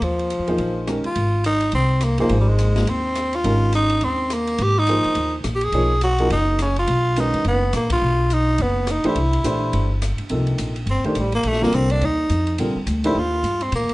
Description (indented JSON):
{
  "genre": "modal jazz",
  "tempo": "210 BPM",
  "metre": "4/4",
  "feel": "swing 60% on 8ths",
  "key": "Ab major, F mixolydian from 10.3 s",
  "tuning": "A4 = 440 Hz",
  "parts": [
    { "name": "growling tenor saxophone", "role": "melody", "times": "0.0-13.9 s", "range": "Eb3 to Ab4", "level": "-21 LUFS", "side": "equal", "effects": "none" },
    { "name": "upright bass", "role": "bass", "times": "0.0-13.9 s", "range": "F#1 to Bb2", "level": "-21 LUFS", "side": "equal", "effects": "none" },
    { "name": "open jazz drum kit", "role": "drums", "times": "0.0-13.9 s", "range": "hi-hat, kick drum, ride cymbal, rim click, snare drum", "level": "-32 LUFS", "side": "equal", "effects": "none" },
    { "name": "clear baby grand piano", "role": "accompaniment", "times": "0.5-13.2 s", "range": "C3 to C#5", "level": "-24 LUFS", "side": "equal", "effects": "none" }
  ],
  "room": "light reverb",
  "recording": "dark, warm production, nothing above 10.7 kHz",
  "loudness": "-18 LUFS",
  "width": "side -19 dB against mid",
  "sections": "0.0-1.2 A section; 1.2-10.3 B section; 10.3-13.9 C section",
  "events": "band accent 7.9; tenor saxophone solo 10.3-13.9",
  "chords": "0.0 Eb9sus4; 1.2 Abmaj9; 5.7 Bmaj9; 9.2 C13; 10.3 F9sus4"
}